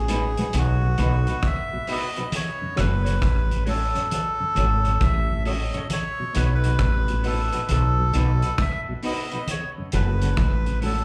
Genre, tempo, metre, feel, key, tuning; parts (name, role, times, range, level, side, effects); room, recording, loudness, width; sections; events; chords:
roots reggae; 67 BPM; 4/4; swing 65% on 16ths; F# dorian; A4 = 442 Hz
melodica; melody; 0.0-11.0 s; F#4 to E5; -30 LUFS; equal; tape echo, slapback echo
woody fretless electric bass; bass; 0.0-11.0 s; F#1 to B1; -24 LUFS; equal
mellow tonewheel organ; accompaniment; 0.1-10.9 s; F#2 to F#4; -36 LUFS; equal; chorus vibrato, slow rotary speaker, slapback echo
semi-hollow electric guitar; accompaniment; 0.1-11.0 s; A3 to C#5; -37 LUFS; equal; spring reverb, tape echo, slapback echo
cloth-damped thuddy drum kit; drums; 0.1-11.0 s; hi-hat, kick drum, rim click; -32 LUFS; equal
congas; percussion; 0.1-11.0 s; -34 LUFS; equal; slapback echo
small room ambience; live gig heard through the venue's PA, club reverb; -23 LUFS; mono
0.0-11.0 A section
0.0 B; 2.3 F#m; 5.9 B; 9.5 F#m